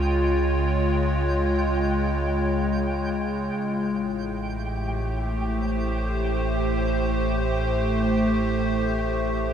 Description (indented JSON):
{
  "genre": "ambient",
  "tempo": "free time",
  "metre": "none",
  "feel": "none",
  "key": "unclear",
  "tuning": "A4 = 440 Hz",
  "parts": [
    { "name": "evolving wavetable pad", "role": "sustained chords", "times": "0.0-9.5 s", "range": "A2 to Db5", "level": "-24 LUFS", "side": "equal", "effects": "chorus, built-in reverb" },
    { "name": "warm sub bass", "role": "bass", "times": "0.0-9.5 s", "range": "A1 to Db2", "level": "-27 LUFS", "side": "equal", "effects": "tube saturation" },
    { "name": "twinkling granular texture", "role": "texture", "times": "0.0-9.5 s", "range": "G5", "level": "-37 LUFS", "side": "right 2 dB", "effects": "built-in reverb" }
  ],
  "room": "wet spring reverb, RT60 2.4 s",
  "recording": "none",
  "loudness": "-22 LUFS",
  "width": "side -8 dB against mid",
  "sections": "0.0-9.5 A section",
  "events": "fade-out on synth texture 0.0-9.5",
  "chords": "0.0 Db; 3.5 Am7"
}